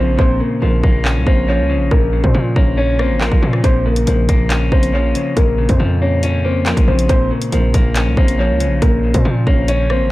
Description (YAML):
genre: hip hop, drill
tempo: 139 BPM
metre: 4/4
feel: half-time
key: Bb minor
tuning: A4 = 440 Hz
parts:
  - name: dark concert grand piano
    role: melody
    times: 0.0-10.1 s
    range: Bb3 to Db5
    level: -20 LUFS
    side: left 1 dB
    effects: low-pass filter, analog delay
  - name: electric guitar at the edge of break-up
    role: accompaniment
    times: 0.0-10.1 s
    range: Bb2 to Db4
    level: -20 LUFS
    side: left 2 dB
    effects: low-pass filter, analog delay
  - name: distorted 808-style bass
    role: bass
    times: 0.0-10.1 s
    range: Ab1 to Bb2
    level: -16 LUFS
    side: equal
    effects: distortion
  - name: drill drum kit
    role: drums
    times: 0.2-10.0 s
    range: handclaps, hi-hat, kick drum, rim click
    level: -16 LUFS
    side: equal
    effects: none
room: little or no reverb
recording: echo-heavy mix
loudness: -12 LUFS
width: side -17 dB against mid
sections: 0.0-10.1 A section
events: break 0.0-3.6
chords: 0.0 Bbm